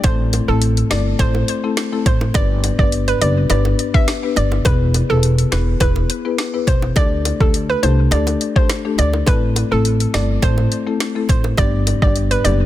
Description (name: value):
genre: dancehall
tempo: 104 BPM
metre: 4/4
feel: straight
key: A minor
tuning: A4 = 439 Hz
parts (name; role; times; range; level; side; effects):
- hollow square pluck; melody; 0.0-12.6 s; A4 to E5; -22 LUFS; right 1 dB; chorus, ping-pong delay
- marimba with medium mallets; accompaniment; 0.0-12.7 s; G3 to B4; -22 LUFS; left 7 dB; sidechain pumping
- upright bass; bass; 0.0-12.7 s; E1 to D2; -18 LUFS; right 1 dB; none
- afro-pop drum kit; drums; 0.0-12.6 s; hi-hat, kick drum, rim click, snare drum; -18 LUFS; equal; soft clipping on snare
- bongos; percussion; 0.0-12.6 s; none; -28 LUFS; right 3 dB; none
room: small room ambience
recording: dense, heavily limited modern master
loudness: -14 LUFS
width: side -14 dB against mid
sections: 0.0-12.7 A section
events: none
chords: 0.0 Am; 2.4 G; 4.7 E; 7.0 Dsus4; 9.3 Am; 11.6 G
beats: | 0.04 0.62 1.20 1.77 | 2.35 2.93 3.50 4.08 | 4.66 5.23 5.81 6.39 | 6.96 7.54 8.12 8.70 | 9.27 9.85 10.43 11.00 | 11.58 12.16